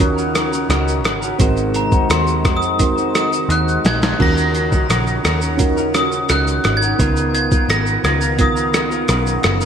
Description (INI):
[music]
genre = indie pop, bedroom pop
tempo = 86 BPM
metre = 4/4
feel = straight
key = Eb minor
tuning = A4 = 444 Hz
[part]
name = electric guitar through a small old amp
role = accompaniment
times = 0.0-9.7 s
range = Db3 to C5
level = -24 LUFS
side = left 2 dB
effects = wide subtle chorus, warbly pitch drift
[part]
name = reed electric piano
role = accompaniment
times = 0.0-9.7 s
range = Cb4 to Bb4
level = -23 LUFS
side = right 7 dB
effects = cassette tape
[part]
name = phased analog pad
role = sustained chords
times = 0.0-9.7 s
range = C3 to Bb4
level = -26 LUFS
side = left 3 dB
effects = phaser, chorus
[part]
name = vintage muted picked electric bass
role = bass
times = 0.0-9.7 s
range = Gb1 to F2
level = -21 LUFS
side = equal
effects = none
[part]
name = lo-fi sampler-style drum kit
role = drums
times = 0.0-9.7 s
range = crash cymbal, hi-hat, kick drum, rim click, shaker, snare drum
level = -19 LUFS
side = equal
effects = overdrive, gated reverb
[part]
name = glockenspiel with hard plastic mallets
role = melody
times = 1.8-8.7 s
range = Bb5 to Bb6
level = -21 LUFS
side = left 1 dB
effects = analog chorus, digital delay
[sound]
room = light reverb, digital ambience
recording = bright 1980s-style digital production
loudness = -14 LUFS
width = side -8 dB against mid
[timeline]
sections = 0.0-9.7 A section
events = glockenspiel solo 0.0-9.7; drum fill 3.5-4.2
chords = 0.0 Ebm7; 1.4 Ab7; 4.2 Ebm7; 7.0 Db13